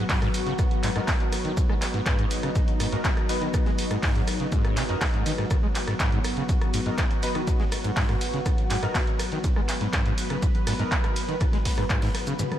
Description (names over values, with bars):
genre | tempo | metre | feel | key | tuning
acid house | 122 BPM | 4/4 | straight | G# minor | A4 = 439 Hz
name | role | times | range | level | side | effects
lush unison pad | sustained chords | 0.0-12.6 s | F#3 to B4 | -30 LUFS | left 1 dB | chorus, phaser, sidechain pumping
overdriven acid bass | riff | 0.0-12.4 s | F#2 to B3 | -30 LUFS | equal | ensemble chorus, sidechain pumping, ping-pong delay
dusty soul sampler-style drum kit | drums | 0.1-12.5 s | hi-hat, shaker, snare drum | -41 LUFS | equal | overdrive, sidechain pumping on perc, high-pass filter on perc, high-pass filter on snare, sidechain pumping on hats, high-pass filter on hats
electronic kick drum | drums | 0.1-12.0 s | none | -25 LUFS | equal | none
punchy analog drum machine | drums | 0.1-12.6 s | handclaps, hi-hat, ride cymbal, rim click, toms | -31 LUFS | equal | none
clear grand piano | stabs | 1.0-10.9 s | B3 to B4 | -35 LUFS | left 1 dB | ensemble chorus, ping-pong delay
room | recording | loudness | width
moderate lush hall reverb, RT60 1.8 s | dreamy mix soaked in reverb | -22 LUFS | side -11 dB against mid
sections
0.0-12.6 A section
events
kick drops out 12.4; drum fill 12.4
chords
0.0 G#m7